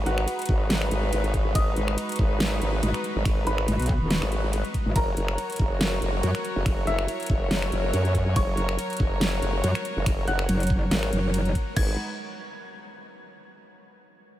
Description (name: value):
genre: heavy wobble dubstep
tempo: 141 BPM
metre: 4/4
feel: swing 54% on 16ths, half-time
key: G# minor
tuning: A4 = 440 Hz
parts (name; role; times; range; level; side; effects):
- warm studio string section; sustained chords; 0.0-12.0 s; F#3 to C#5; -32 LUFS; left 1 dB; sidechain pumping
- formant-sweep wobble bass; bass; 0.0-12.0 s; F#1 to F#2; -26 LUFS; equal; chorus, overdrive
- warm baby grand piano; melody; 0.1-11.9 s; E4 to G#6; -34 LUFS; equal; wide subtle chorus, analog delay
- dubstep drum kit; drums; 0.1-11.9 s; crash cymbal, finger snaps, hi-hat, ride cymbal, snare drum; -31 LUFS; equal; small room reverb
- electronic kick drum; drums; 0.5-11.9 s; none; -25 LUFS; equal; small room reverb
- metallic wobble bass; bass; 2.8-6.3, 9.6-11.5 s; D#1 to F#2; -23 LUFS; equal; chorus, overdrive
room: light reverb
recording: none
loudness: -22 LUFS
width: side -13 dB against mid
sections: 0.0-11.8 A section; 11.8-13.5 B section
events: drop 0.0-11.8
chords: 0.0 G#m7; 5.0 F#; 11.8 G#m7